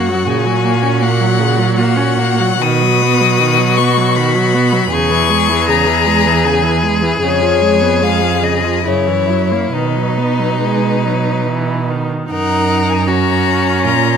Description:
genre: classical, slow romantic movement for string quartet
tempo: 68-82 BPM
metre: 3/4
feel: rubato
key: B major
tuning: A4 = 441 Hz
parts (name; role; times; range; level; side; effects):
- rich violin; melody; 0.0-14.2 s; B4 to D#6; -17 LUFS; left 13 dB; none
- clear violin; second line; 0.0-14.2 s; D#4 to A#4; -18 LUFS; left 4 dB; none
- clear viola; accompaniment; 0.0-14.2 s; C#3 to D#4; -18 LUFS; right 3 dB; none
- clear cello; bass; 0.0-14.2 s; E2 to B2; -16 LUFS; right 5 dB; none
room: moderate scoring stage reverb, RT60 1.6 s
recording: close, detailed microphones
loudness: -11 LUFS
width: side -7 dB against mid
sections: 0.0-12.3 A section; 12.3-14.2 B section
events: none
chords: 0.3 F#/A#; 2.6 B; 4.9 C#m/E; 7.2 C#7/E#; 8.9 F#7; 9.7 B; 12.3 F#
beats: | 0.27 1.01 1.77 | 2.61 3.40 4.16 | 4.92 5.69 6.46 | 7.23 8.02 8.86 | 9.74 10.62 11.47 | 12.31 13.08 13.85

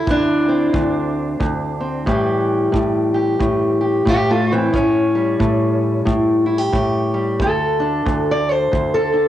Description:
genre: acoustic country blues, solo or duo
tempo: 90 BPM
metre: 4/4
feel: swing 60% on 8ths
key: unclear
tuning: A4 = 442 Hz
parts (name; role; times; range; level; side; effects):
- fingerpicked steel-string acoustic guitar; melody; 0.0-9.3 s; D2 to D5; -16 LUFS; equal; cassette tape
- kick drum; drums; 0.1-8.9 s; none; -24 LUFS; right 1 dB; none
room: studio reverb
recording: home recording on cassette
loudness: -15 LUFS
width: side -12 dB against mid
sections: 0.0-9.3 A section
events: none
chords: 0.0 D7sus2; 2.1 A7; 7.4 N.C.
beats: 0.06 0.73 1.40 | 2.06 2.73 3.40 4.06 | 4.73 5.39 6.06 6.73 | 7.39 8.06 8.73

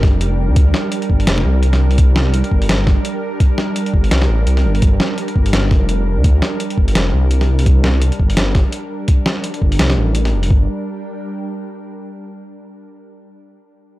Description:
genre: half-time drum and bass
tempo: 169 BPM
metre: 4/4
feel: swing 58% on 16ths, half-time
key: G minor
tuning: A4 = 440 Hz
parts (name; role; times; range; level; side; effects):
- bowed-like drone; sustained chords; 0.0-11.9 s; G3 to G5; -23 LUFS; right 1 dB; built-in reverb, sidechain pumping
- dark detuned saw bass; bass; 0.0-10.7 s; F1 to D2; -15 LUFS; equal; none
- boom bap sampler-style drum kit; drums; 0.0-10.5 s; hi-hat, snare drum; -20 LUFS; equal; none
- electronic kick drum; drums; 0.0-10.6 s; none; -13 LUFS; equal; none
room: little or no reverb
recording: dry, gritty hardware recording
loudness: -13 LUFS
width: side -17 dB against mid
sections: 0.0-10.5 A section; 10.5-11.9 B section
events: none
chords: 0.0 Gm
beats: 0.21 | 0.56 0.92 1.27 1.63 | 1.98 2.34 2.69 3.05 | 3.40 3.76 4.11 4.47 | 4.82 5.18 5.53 5.89 | 6.24 6.60 6.95 7.31 | 7.66 8.02 8.37 8.73 | 9.08 9.44 9.79 10.15 | 10.50 10.86 11.21 11.57

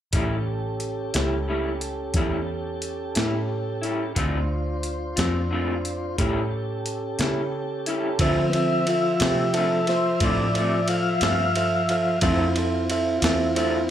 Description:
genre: slow blues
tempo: 60 BPM (dotted quarters)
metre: 12/8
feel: straight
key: D minor from 8.2 s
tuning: A4 = 440 Hz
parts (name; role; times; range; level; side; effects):
- electric guitar through a small old amp; accompaniment; 0.1-13.8 s; A2 to F4; -29 LUFS; left 3 dB; tremolo, slapback echo
- mellow tonewheel organ; sustained chords; 0.1-13.9 s; F3 to F5; -25 LUFS; equal; slow rotary speaker
- vintage muted fingered electric bass; bass; 0.1-13.9 s; A1 to D3; -28 LUFS; equal; none
- breakbeat sampler-style drum kit; drums; 0.1-13.7 s; hi-hat, kick drum, ride cymbal, snare drum; -28 LUFS; equal; none
- tine electric piano; accompaniment; 8.2-13.8 s; F4 to E5; -27 LUFS; right 4 dB; slapback echo
room: light reverb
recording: live gig heard through the venue's PA, club reverb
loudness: -21 LUFS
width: side -10 dB against mid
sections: 0.1-8.2 A section; 8.2-13.9 B section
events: tonewheel organ solo 8.2-13.9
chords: 0.1 A7; 4.2 Dm7; 6.2 A7; 8.2 Dm7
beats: | 0.14 1.15 2.15 3.16 | 4.17 5.18 6.19 7.20 | 8.21 9.21 10.22 11.23 | 12.23 13.24

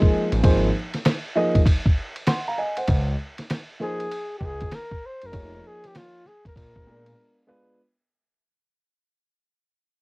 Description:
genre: hip hop, jazz-hop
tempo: 98 BPM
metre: 4/4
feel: swing 65% on 16ths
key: unclear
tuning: A4 = 441 Hz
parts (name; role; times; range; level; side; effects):
- dark baby grand piano; accompaniment; 0.0-7.8 s; F3 to C6; -24 LUFS; right 1 dB; cassette tape
- lo-fi sampler-style drum kit; drums; 0.0-7.2 s; hi-hat, kick drum, ride cymbal, snare drum; -22 LUFS; equal; none
- smooth synth bass; bass; 0.3-7.1 s; F1 to Bb2; -25 LUFS; equal; none
- breathy flugelhorn; melody; 3.8-7.4 s; F4 to C5; -36 LUFS; left 1 dB; cassette tape
room: light reverb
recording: home recording on cassette, vinyl crackle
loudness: -21 LUFS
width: side -27 dB against mid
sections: 0.0-7.8 A section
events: fade-out 0.0-7.8; break 7.2-7.8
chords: 0.4 Ab; 2.9 Dbmaj9; 5.3 Db69/F; 6.6 Bb7b9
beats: | 0.44 1.05 1.66 2.27 | 2.89 3.50 4.11 4.72 | 5.33 5.95 6.56 7.17

